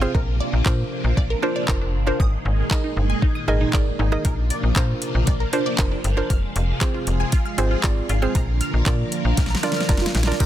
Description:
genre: dance-pop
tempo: 117 BPM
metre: 4/4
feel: straight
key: unclear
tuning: A4 = 438 Hz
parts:
  - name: mallet-like synth pluck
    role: accompaniment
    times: 0.0-10.5 s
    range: C4 to Eb5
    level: -26 LUFS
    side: right 4 dB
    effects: chorus, sidechain pumping
  - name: string machine, full ensemble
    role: sustained chords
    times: 0.0-10.5 s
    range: Bb2 to Bb4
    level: -28 LUFS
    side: equal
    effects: phaser, ensemble chorus, sidechain pumping
  - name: wide unison pluck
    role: arpeggios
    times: 0.0-10.3 s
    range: D4 to F6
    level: -31 LUFS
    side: equal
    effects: phaser, sidechain pumping, dub echo
  - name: slap-like FM bass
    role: bass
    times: 0.0-10.5 s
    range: F1 to Bb2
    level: -22 LUFS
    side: equal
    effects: sidechain pumping
  - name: smooth R&B drum kit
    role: drums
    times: 0.1-10.5 s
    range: crash cymbal, handclaps, hi-hat, kick drum, snare drum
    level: -21 LUFS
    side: equal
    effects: none
room: little or no reverb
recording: dense, heavily limited modern master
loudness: -19 LUFS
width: side -12 dB against mid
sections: 0.0-10.4 A section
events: drum fill 9.4-10.4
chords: 0.1 Bbadd9; 2.2 Absus2; 4.2 Bbadd9; 6.3 Fm; 8.4 Bb

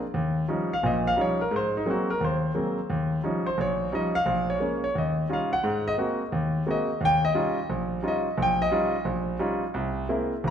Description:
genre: jazz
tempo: 175 BPM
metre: 4/4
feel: swing 63% on 8ths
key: Eb mixolydian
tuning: A4 = 444 Hz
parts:
  - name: warm concert grand piano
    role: solo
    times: 0.0-10.5 s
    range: G#1 to G5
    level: -24 LUFS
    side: equal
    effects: none
room: wet scoring stage reverb, RT60 1.8 s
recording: recorded in a church or concert hall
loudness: -24 LUFS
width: side -8 dB against mid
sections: 0.1-10.5 A section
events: grand piano solo 0.1-10.5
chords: 0.1 Eb9; 1.5 Ab9; 2.9 Eb9; 4.3 Bbm7; 4.9 Eb9; 5.6 Ab9; 7.0 Eb9; 9.8 Caug7

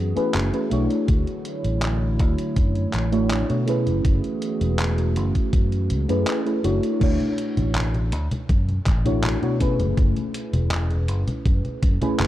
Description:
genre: vaporwave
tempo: 81 BPM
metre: 4/4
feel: straight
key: F# minor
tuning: A4 = 444 Hz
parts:
  - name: mellow FM electric piano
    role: accompaniment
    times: 0.0-12.3 s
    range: A3 to C#5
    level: -25 LUFS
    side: equal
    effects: phaser, analog chorus, tape echo
  - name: warbly tape-like pad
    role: sustained chords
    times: 0.0-7.0 s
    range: D3 to C#5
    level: -30 LUFS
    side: right 1 dB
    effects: chorus, built-in reverb
  - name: fingered electric bass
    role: bass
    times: 0.0-12.3 s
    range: E1 to B2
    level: -23 LUFS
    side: equal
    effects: none
  - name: detuned 8-bit digital drum machine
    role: drums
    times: 0.2-12.3 s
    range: congas, crash cymbal, handclaps, hi-hat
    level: -29 LUFS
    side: equal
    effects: none
  - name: electronic kick drum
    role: drums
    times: 1.1-12.0 s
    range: none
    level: -20 LUFS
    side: equal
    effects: none
room: little or no reverb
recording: dark, warm production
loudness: -20 LUFS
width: side -14 dB against mid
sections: 0.0-7.0 A section; 7.0-12.3 B section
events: none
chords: 0.0 F#m11; 1.1 Dmaj9; 3.7 F#m11; 7.0 Dmaj9; 9.6 F#m11

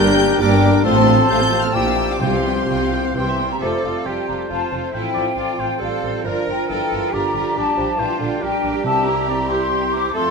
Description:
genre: classical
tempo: 137 BPM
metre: 3/4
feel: rubato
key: F major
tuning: A4 = 441 Hz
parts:
  - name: warm symphonic violin section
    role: melody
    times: 0.0-10.3 s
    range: Bb4 to G6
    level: -29 LUFS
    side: left 4 dB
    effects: none
  - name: clear clarinet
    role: second line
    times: 0.0-3.3 s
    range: D4 to G4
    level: -26 LUFS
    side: left 2 dB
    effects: none
  - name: hollow flute section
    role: second line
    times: 0.0-10.3 s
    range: C5 to D6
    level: -23 LUFS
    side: left 3 dB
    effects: none
  - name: warm oboe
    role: second line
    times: 0.0-10.3 s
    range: A4 to E5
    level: -28 LUFS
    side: right 2 dB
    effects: none
  - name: warm symphonic violin section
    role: second line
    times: 0.0-10.3 s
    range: F4 to A5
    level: -28 LUFS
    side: left 2 dB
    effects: none
  - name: dark bassoon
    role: accompaniment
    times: 0.0-10.3 s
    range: D3 to A3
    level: -27 LUFS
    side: right 2 dB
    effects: none
  - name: rich studio viola section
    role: accompaniment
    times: 0.0-10.3 s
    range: G3 to Bb4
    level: -26 LUFS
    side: right 3 dB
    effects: none
  - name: mellow French horn section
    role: sustained chords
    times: 0.0-10.3 s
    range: F3 to G4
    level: -25 LUFS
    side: left 7 dB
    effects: none
  - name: rich symphonic cello section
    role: bass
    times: 0.0-10.3 s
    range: G2 to Bb4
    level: -24 LUFS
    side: right 3 dB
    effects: none
  - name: rich symphonic double bass section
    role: bass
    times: 0.0-10.3 s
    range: F1 to F2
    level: -26 LUFS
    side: right 4 dB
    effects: none
  - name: timpani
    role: percussion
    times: 2.2-2.9, 8.8-9.5 s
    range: C3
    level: -28 LUFS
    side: right 3 dB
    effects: none
room: moderate scoring stage reverb, RT60 2.2 s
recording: none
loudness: -16 LUFS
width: side -4 dB against mid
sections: 0.0-3.6 A section; 3.6-10.3 B section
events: none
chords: 0.0 Gm; 0.9 F/A; 1.7 Gm7/Bb; 2.2 Csus4; 3.1 C; 3.6 F; 4.9 F/A; 6.2 Gm7; 7.6 Gm/Bb; 8.8 C7

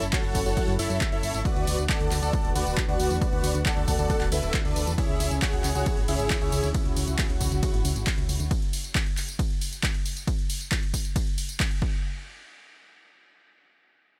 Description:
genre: uplifting trance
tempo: 136 BPM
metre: 4/4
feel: straight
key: unclear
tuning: A4 = 444 Hz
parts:
  - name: supersaw chords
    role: melody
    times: 0.0-6.7 s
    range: D4 to A5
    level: -32 LUFS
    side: equal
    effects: lush chorus, sidechain pumping, dub echo
  - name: dark studio string section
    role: sustained chords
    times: 0.0-8.5 s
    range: C#3 to A4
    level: -37 LUFS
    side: equal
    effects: sidechain pumping
  - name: solid FM bass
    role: bass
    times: 0.0-8.5 s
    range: D1 to F#2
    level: -31 LUFS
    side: equal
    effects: sidechain pumping
  - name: punchy analog drum machine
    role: drums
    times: 0.0-11.8 s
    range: handclaps, hi-hat, ride cymbal, tambourine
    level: -34 LUFS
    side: equal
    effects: overdrive
  - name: electronic kick drum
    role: drums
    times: 0.1-11.9 s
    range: none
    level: -30 LUFS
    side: equal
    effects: overdrive
room: little or no reverb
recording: none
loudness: -26 LUFS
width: mono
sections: 0.0-12.0 A section; 12.0-14.2 B section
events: drop 0.0-12.0; band accent 11.6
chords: 0.0 F#m7; 1.5 D6; 5.0 C#m; 8.5 N.C.

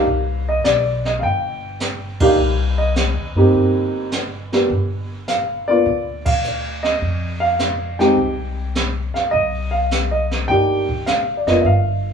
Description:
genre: jazz piano trio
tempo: 104 BPM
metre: 4/4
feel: swing 69% on 8ths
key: C minor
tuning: A4 = 439 Hz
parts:
  - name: dark grand piano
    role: melody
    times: 0.0-12.1 s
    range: Ab3 to G5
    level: -18 LUFS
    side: equal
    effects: none
  - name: upright bass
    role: bass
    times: 0.0-12.1 s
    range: F1 to G2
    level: -22 LUFS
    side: left 1 dB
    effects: none
  - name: jazz brush drum kit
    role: drums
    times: 0.1-12.1 s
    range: brushed snare drum, hi-hat, kick drum, ride cymbal, snare drum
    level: -25 LUFS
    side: right 2 dB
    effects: none
room: moderate large studio reverb, RT60 1.2 s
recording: band playing live in one room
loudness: -16 LUFS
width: side -6 dB against mid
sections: 0.0-12.1 A section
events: band accent 2.1, 6.2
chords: 0.1 Cm7; 4.7 G7(no3); 7.0 F7(no3); 9.3 Cm7

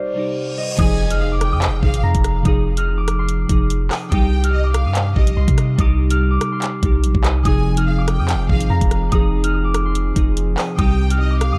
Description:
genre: hip hop, drill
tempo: 144 BPM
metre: 4/4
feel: half-time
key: unclear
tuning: A4 = 439 Hz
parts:
  - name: concert harp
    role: melody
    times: 0.0-11.6 s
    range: C5 to F6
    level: -29 LUFS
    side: equal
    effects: low-pass filter, tape echo
  - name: glassy digital keys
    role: accompaniment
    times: 0.0-11.6 s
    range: C3 to Ab4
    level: -25 LUFS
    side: equal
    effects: chorus, low-pass filter, tape echo
  - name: reverse cymbal and impact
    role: sound effects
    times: 0.1-2.5 s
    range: none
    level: -33 LUFS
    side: equal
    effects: none
  - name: warm studio violin section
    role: second line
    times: 0.8-11.6 s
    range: Eb5 to Ab5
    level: -33 LUFS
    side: equal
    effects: tape echo
  - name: long sustained 808-style bass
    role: bass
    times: 0.8-11.6 s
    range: F1 to C3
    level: -21 LUFS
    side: equal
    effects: none
  - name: drill drum kit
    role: drums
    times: 0.8-11.5 s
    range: crash cymbal, handclaps, hi-hat, kick drum, rim click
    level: -22 LUFS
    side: equal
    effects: none
  - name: pipe organ, flutes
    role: sustained chords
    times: 7.5-11.6 s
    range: C3 to Ab4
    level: -32 LUFS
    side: equal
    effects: none
room: little or no reverb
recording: echo-heavy mix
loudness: -18 LUFS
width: mono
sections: 0.8-11.6 A section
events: break 0.0-0.8; reverse cymbal 0.1-0.8; impact 0.8-2.5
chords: 0.0 Cm; 0.8 Fm7; 4.1 Cm; 7.5 Fm7; 10.8 Cm

